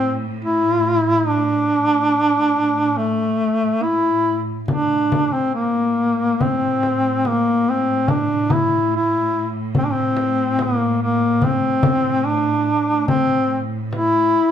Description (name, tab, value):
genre	caucasian folk, Caucasian lament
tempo	71 BPM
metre	4/4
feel	rubato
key	A phrygian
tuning	A4 = 441 Hz
part	warm duduk	melody	0.0-14.5 s	A3 to E4	-17 LUFS	equal	none
part	clear studio string section	drone	0.0-14.5 s	A2	-27 LUFS	right 1 dB	none
part	frame drum	percussion	4.7-14.1 s	none	-23 LUFS	left 2 dB	none
room	wet large studio reverb, RT60 1.2 s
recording	band playing live in one room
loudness	-16 LUFS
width	side -9 dB against mid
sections	0.0-14.5 A section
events	none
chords	none